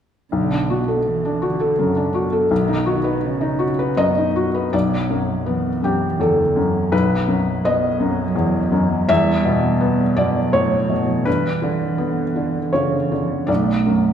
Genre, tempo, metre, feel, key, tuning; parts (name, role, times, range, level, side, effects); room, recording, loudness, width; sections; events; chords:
neoclassical piano and strings; 82 BPM; 3/4; rubato; B minor; A4 = 439 Hz
dark cello; second line; 0.3-14.1 s; B2 to A3; -24 LUFS; right 5 dB
felt-muted upright piano; accompaniment; 0.3-14.1 s; B1 to E5; -17 LUFS; left 1 dB
wet recital hall reverb, RT60 1.3 s; recorded in a church or concert hall; -17 LUFS; side -8 dB against mid
0.3-4.7 A section; 4.7-14.1 B section
0.3 Bm7; 2.5 B; 4.7 Bm7; 6.9 B; 9.1 Em; 11.3 G6; 13.5 Bm7